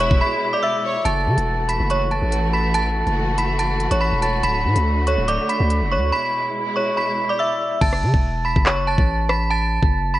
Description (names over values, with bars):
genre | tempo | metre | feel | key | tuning
hip hop, drill | 142 BPM | 4/4 | half-time | F# minor | A4 = 440 Hz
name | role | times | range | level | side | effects
metallic FM bell | melody | 0.0-10.2 s | C#5 to B6 | -20 LUFS | right 1 dB | chorus, ping-pong delay
bright symphonic violin section | second line | 0.0-1.0 s | C#5 to E5 | -30 LUFS | equal | ping-pong delay
clear studio string section | sustained chords | 0.0-7.8 s | B2 to F#4 | -27 LUFS | left 1 dB | none
long sustained 808-style bass | bass | 0.0-10.2 s | D1 to C#3 | -21 LUFS | equal | none
drill drum kit | drums | 0.0-9.9 s | crash cymbal, handclaps, hi-hat, kick drum, rim click | -20 LUFS | equal | none
room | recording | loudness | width
light reverb | worn, warbling old tape, cassette tape, warbly pitch drift, nothing above 10.4 kHz | -17 LUFS | side -15 dB against mid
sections
0.0-1.1 A section; 1.1-7.8 B section; 7.8-10.2 C section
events
break 0.2-1.1, 6.1-7.8; hi-hats muted 7.8-10.2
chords
0.0 E; 1.1 F#m7; 4.4 D; 6.1 E; 7.8 F#m7